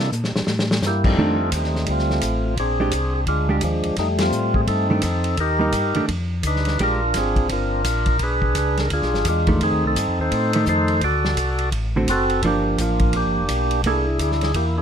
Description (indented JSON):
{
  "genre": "soul jazz organ trio",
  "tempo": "170 BPM",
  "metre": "4/4",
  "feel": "swing 62% on 8ths",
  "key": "F mixolydian",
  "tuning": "A4 = 440 Hz",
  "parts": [
    { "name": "percussive tonewheel organ", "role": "melody", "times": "0.0-14.8 s", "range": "F2 to D5", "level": "-22 LUFS", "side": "equal", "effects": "slow rotary speaker" },
    { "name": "mellow tonewheel organ", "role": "bass", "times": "0.0-14.8 s", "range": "F1 to C3", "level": "-23 LUFS", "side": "equal", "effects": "slow rotary speaker" },
    { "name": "warm soul drum kit", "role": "drums", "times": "0.1-14.7 s", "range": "crash cymbal, hi-hat, kick drum, ride cymbal, snare drum", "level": "-26 LUFS", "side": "equal", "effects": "none" },
    { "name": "hollow-body jazz guitar", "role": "accompaniment", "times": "1.2-7.0, 9.5-14.1 s", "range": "D3 to A4", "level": "-22 LUFS", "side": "right 2 dB", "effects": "none" }
  ],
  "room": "light reverb",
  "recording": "close, detailed microphones",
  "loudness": "-18 LUFS",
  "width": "side -8 dB against mid",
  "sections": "0.0-1.2 A section; 1.2-14.8 B section",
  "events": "drum fill 0.1-0.8; band accent 4.2",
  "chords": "0.0 C13; 1.2 F13; 2.6 Bb13; 4.0 F9; 5.4 Ebmaj7#11; 6.1 Dm6; 6.8 Bb13; 8.2 Bdim7; 9.6 F9; 11.0 D7; 12.4 Gm7; 13.8 C13",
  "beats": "0.13 0.48 0.83 | 1.18 1.53 1.88 2.23 | 2.58 2.93 3.28 3.63 | 3.98 4.33 4.68 5.03 | 5.39 5.74 6.09 6.44 | 6.79 7.15 7.50 7.85 | 8.20 8.55 8.91 9.26 | 9.61 9.96 10.32 10.67 | 11.02 11.38 11.73 12.08 | 12.44 12.79 13.14 13.49 | 13.85 14.20 14.55"
}